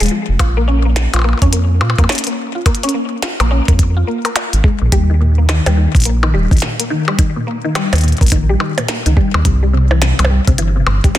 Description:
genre	IDM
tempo	106 BPM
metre	4/4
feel	swing 62% on 16ths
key	unclear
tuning	A4 = 438 Hz
part	mallet-like synth pluck	arpeggios	0.0-11.2 s	G2 to Bb4	-19 LUFS	left 2 dB	ensemble chorus, ping-pong delay
part	round analog bass	bass	0.0-11.1 s	Eb1 to Bb2	-13 LUFS	equal	none
part	glitchy drum kit	drums	0.0-11.2 s	hi-hat, percussion blips, snare drum	-19 LUFS	left 1 dB	soft clipping on snare, ping-pong delay
part	electronic kick drum	drums	0.4-11.1 s	none	-12 LUFS	equal	none
room	light reverb, digital ambience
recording	dense, heavily limited modern master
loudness	-12 LUFS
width	side -13 dB against mid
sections	0.0-11.2 A section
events	filter sweep on synth arpeggio sound 0.0-11.2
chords	0.4 Bbm; 4.9 Eb; 9.5 C

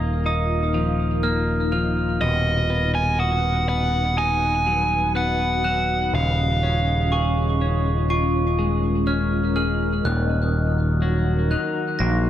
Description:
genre	rock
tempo	61 BPM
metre	4/4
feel	straight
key	Eb minor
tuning	A4 = 440 Hz
part	overdriven electric guitar	melody	0.0-9.0 s	Eb5 to Ab5	-23 LUFS	right 2 dB	digital delay
part	shimmering ambient pad	sustained chords	0.0-12.3 s	Db4 to F#5	-30 LUFS	equal	chorus, built-in reverb, phaser
part	glockenspiel with soft plastic mallets	arpeggios	0.0-12.3 s	Db6 to Bb6	-29 LUFS	right 3 dB	digital delay
part	twelve-string electric guitar	arpeggios	0.0-12.3 s	Eb2 to Ab4	-26 LUFS	left 4 dB	digital delay
part	growling picked electric bass	bass	0.0-12.3 s	Eb1 to Bb1	-22 LUFS	equal	overdrive
room	moderate large studio reverb, RT60 1.4 s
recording	none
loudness	-19 LUFS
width	side -11 dB against mid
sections	0.0-10.0 A section; 10.0-12.3 B section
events	none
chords	0.0 Bbsus4/Eb; 2.2 B/D#; 6.1 Db/Eb; 10.0 Ebm

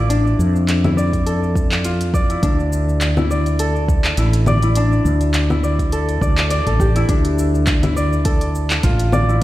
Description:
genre	organic downtempo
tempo	103 BPM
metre	4/4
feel	swing 55% on 16ths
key	D minor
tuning	A4 = 441 Hz
part	Celtic harp	arpeggios	0.0-9.4 s	A3 to D5	-20 LUFS	left 1 dB	digital delay
part	mellow fretless electric bass	bass	0.0-9.4 s	A1 to F2	-18 LUFS	equal	sidechain pumping
part	deep house drum kit	drums	0.1-9.4 s	congas, handclaps, hi-hat, shaker	-23 LUFS	left 1 dB	none
part	electronic kick drum	drums	1.1-9.0 s	none	-19 LUFS	equal	none
room	light reverb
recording	played on a big sound system in a bare room, stone room reverb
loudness	-15 LUFS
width	side -15 dB against mid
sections	0.0-7.1 A section; 7.1-9.4 B section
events	none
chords	0.0 Dmadd9/A; 2.4 E7(no3); 7.1 Dm

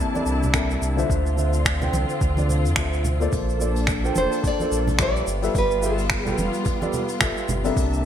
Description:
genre	sunset chillout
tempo	108 BPM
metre	4/4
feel	swing 58% on 16ths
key	unclear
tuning	A4 = 436 Hz
part	dark concert grand piano	accompaniment	0.0-8.0 s	C3 to A5	-26 LUFS	equal	auto-pan, digital delay
part	muted studio string section	sustained chords	0.0-8.1 s	C3 to A5	-29 LUFS	left 1 dB	none
part	soft brush drum kit	drums	0.2-8.0 s	finger snaps, hi-hat, shaker	-27 LUFS	right 1 dB	gated reverb
part	congas	percussion	0.2-7.6 s	none	-31 LUFS	right 2 dB	none
part	warm sub bass	bass	0.3-8.1 s	F1 to F2	-24 LUFS	equal	none
part	electronic kick drum	drums	0.5-7.9 s	none	-26 LUFS	equal	overdrive
part	nylon-string guitar	melody	4.2-6.4 s	A4 to D5	-26 LUFS	right 1 dB	digital delay
room	moderate plate reverb, RT60 2.1 s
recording	bright 1980s-style digital production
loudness	-20 LUFS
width	side -9 dB against mid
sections	0.0-8.1 A section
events	none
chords	0.0 C13; 3.3 G13

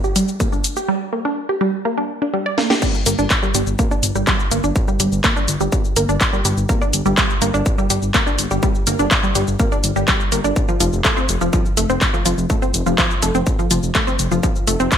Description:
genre	melodic techno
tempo	124 BPM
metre	4/4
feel	straight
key	G minor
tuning	A4 = 440 Hz
part	wide unison pluck	arpeggios	0.0-14.9 s	F3 to D5	-20 LUFS	right 1 dB	sidechain pumping, ping-pong delay
part	techno drum kit	drums	0.0-15.0 s	crash cymbal, handclaps, hi-hat, shaker, snare drum	-20 LUFS	left 1 dB	gated reverb
part	electronic kick drum	drums	0.4-15.0 s	none	-20 LUFS	equal	distortion
part	swelling detuned saw bass	bass	3.1-14.9 s	F1 to G1	-20 LUFS	equal	sidechain pumping
room	light reverb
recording	bright 1980s-style digital production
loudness	-15 LUFS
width	side -8 dB against mid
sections	0.0-2.8 A section; 2.8-15.0 B section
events	build-up 0.0-2.8; drum fill 0.0-0.9, 2.6; filter sweep on synth arpeggio sound 0.0-2.8; drop 2.8-15.0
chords	0.0 Gm; 10.6 F

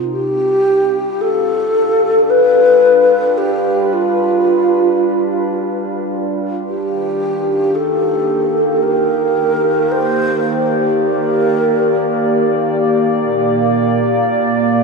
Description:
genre	ambient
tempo	free time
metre	none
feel	none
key	unclear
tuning	A4 = 440 Hz
part	warbly tape-like pad	sustained chords	0.0-14.8 s	Bb2 to D5	-17 LUFS	equal	chorus, built-in reverb
part	breathy mellow wooden-headed alto flute	melody	0.1-12.6 s	F4 to C5	-14 LUFS	equal	diffuse ambient delay
room	wet cathedral reverb, RT60 6.5 s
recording	in a vast, echoing space, cassette tape, studio ambience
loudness	-12 LUFS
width	side -4 dB against mid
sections	0.0-14.8 A section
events	fade-in on ambient pad 0.0-14.8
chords	0.1 G7; 6.7 Ebmaj7; 13.2 Bb

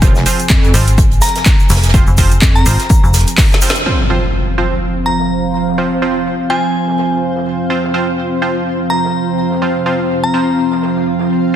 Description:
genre	bass house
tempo	125 BPM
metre	4/4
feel	swing 57% on 16ths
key	F minor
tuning	A4 = 440 Hz
part	sweeping resonant pad	sustained chords	0.0-11.6 s	F3 to Ab5	-19 LUFS	right 2 dB	chorus, sidechain pumping
part	band-passed chord stab	stabs	0.0-10.6 s	F3 to C5	-21 LUFS	right 3 dB	chorus, sidechain pumping, digital delay
part	wobble bass	bass	0.0-2.6 s	F1 to F2	-15 LUFS	equal	chorus, sidechain pumping
part	electronic kick drum	drums	0.0-3.5 s	none	-11 LUFS	equal	overdrive
part	garage drum kit	drums	0.0-3.8 s	handclaps, hi-hat, snare drum	-18 LUFS	equal	overdrive
part	open jazz drum kit	drums	0.0-11.4 s	hi-hat, snare drum	-27 LUFS	right 2 dB	high-pass filter on hats, low-pass filter on hats, high-pass filter on snare, low-pass filter on snare, high-pass filter on room, low-pass filter on room
part	egg shaker	percussion	0.0-3.8 s	none	-24 LUFS	left 1 dB	none
part	metallic FM bass	bass	0.7-3.3 s	F1 to Ab1	-12 LUFS	equal	tube saturation, sidechain pumping
part	glassy synth bell	melody	1.2-10.6 s	Ab5 to Bb5	-21 LUFS	left 2 dB	chorus, digital delay
part	impact	sound effects	3.9-5.8 s	none	-19 LUFS	equal	none
part	granular cloud pad	texture	5.4-11.6 s	C4 to F5	-20 LUFS	left 1 dB	built-in reverb, sidechain pumping
room	moderate lush hall reverb, RT60 2.0 s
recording	dense, heavily limited modern master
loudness	-11 LUFS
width	side -10 dB against mid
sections	0.0-3.9 A section; 3.9-11.6 B section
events	drop 0.0-3.9; drum fill 3.4-3.9; band accent 3.7; impact 3.9-5.8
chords	0.0 F5

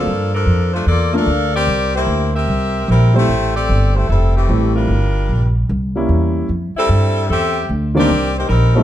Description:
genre	jazz, big band swing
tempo	149 BPM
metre	4/4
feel	swing 66% on 8ths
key	F major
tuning	A4 = 440 Hz
part	bright saxophone section	melody	0.0-8.8 s	E3 to F5	-18 LUFS	left 1 dB	none
part	warm grand piano	accompaniment	0.0-8.8 s	Eb3 to F4	-18 LUFS	equal	none
part	upright bass	bass	0.0-8.8 s	F1 to G2	-16 LUFS	equal	none
room	light reverb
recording	dark, warm production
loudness	-14 LUFS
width	side -12 dB against mid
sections	0.0-6.5 A section; 6.5-8.8 B section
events	none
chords	0.1 Gm9; 1.7 C7; 3.3 Fmaj9; 4.9 Gm7; 5.7 C7b9; 6.5 Fmaj9; 8.1 Cm7

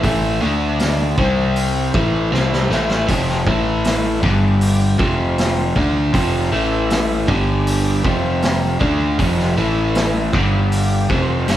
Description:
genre	blues rock power trio and southern rock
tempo	79 BPM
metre	4/4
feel	straight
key	A minor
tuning	A4 = 440 Hz
part	overdriven tonewheel organ	sustained chords	0.0-11.6 s	A3 to F5	-31 LUFS	right 4 dB	slow rotary speaker, chorus vibrato
part	overdriven electric guitar	riff	0.0-11.6 s	F2 to D4	-18 LUFS	left 1 dB	none
part	fuzz picked electric bass	bass	0.0-11.6 s	F1 to D2	-21 LUFS	right 1 dB	overdrive
part	vintage drum kit	drums	0.0-11.6 s	hi-hat, kick drum, snare drum, splash cymbal	-22 LUFS	equal	none
room	light reverb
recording	band playing live in one room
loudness	-15 LUFS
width	side -12 dB against mid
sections	0.0-11.6 A section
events	drum fill 2.3-3.1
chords	0.4 D5; 1.2 C5; 1.9 Am; 3.1 F5; 3.5 A5; 4.2 G5; 5.0 F5; 6.5 A5; 7.3 G5; 8.0 F5; 9.6 A5; 10.3 G5

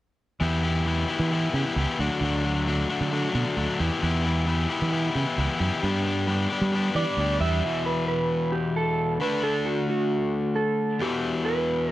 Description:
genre	rock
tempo	133 BPM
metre	4/4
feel	straight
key	E minor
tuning	A4 = 435 Hz
part	overdriven semi-hollow guitar	riff	0.4-11.9 s	E2 to G4	-26 LUFS	left 3 dB	none
part	fingered electric bass	bass	0.4-7.6 s	C#2 to G3	-25 LUFS	right 1 dB	none
part	electric slide guitar	melody	7.0-11.9 s	F#4 to E5	-26 LUFS	right 3 dB	none
room	light reverb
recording	none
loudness	-23 LUFS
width	side -15 dB against mid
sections	0.4-7.6 A section; 7.6-11.9 B section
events	none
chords	0.4 Em; 2.0 D; 3.8 Em; 5.8 G; 7.6 E5; 9.2 D; 11.0 Em

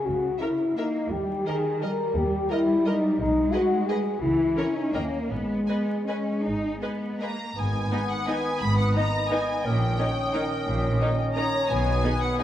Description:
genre	classical, orchestral ballroom waltz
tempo	150-188 BPM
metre	3/4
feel	rubato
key	G# minor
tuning	A4 = 438 Hz
part	dark French horn section	sustained chords	0.0-12.4 s	D#3 to A#4	-27 LUFS	left 2 dB	none
part	warm studio double bass section	bass	0.0-12.0 s	G#1 to D#2	-30 LUFS	right 1 dB	none
part	warm symphonic cello section	bass	0.0-12.0 s	G#2 to D#4	-30 LUFS	right 1 dB	none
part	rich symphonic violin section	melody	0.4-12.4 s	C#5 to B5	-33 LUFS	left 2 dB	none
part	warm chamber violin section	second line	0.4-12.4 s	G#4 to D#5	-37 LUFS	left 2 dB	none
part	rich chamber viola section	accompaniment	0.4-12.4 s	B3 to B4	-35 LUFS	right 1 dB	none
part	large flute ensemble	second line	7.6-12.4 s	D#6	-34 LUFS	left 2 dB	none
part	warm bassoon	accompaniment	7.6-12.4 s	B3 to C#4	-34 LUFS	right 3 dB	none
part	warm clarinet	second line	7.9-12.4 s	A#4 to D#5	-31 LUFS	left 2 dB	none
room	wet scoring stage reverb, RT60 1.9 s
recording	vinyl crackle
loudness	-23 LUFS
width	side -11 dB against mid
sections	0.0-7.6 A section; 7.6-12.4 B section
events	none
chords	0.0 A#dim/C#; 1.1 D#; 3.2 G#m/B; 4.2 A#dim/C# (rootless); 4.9 D#7; 5.3 G#m; 9.7 D#7/A#; 11.7 G#m/B

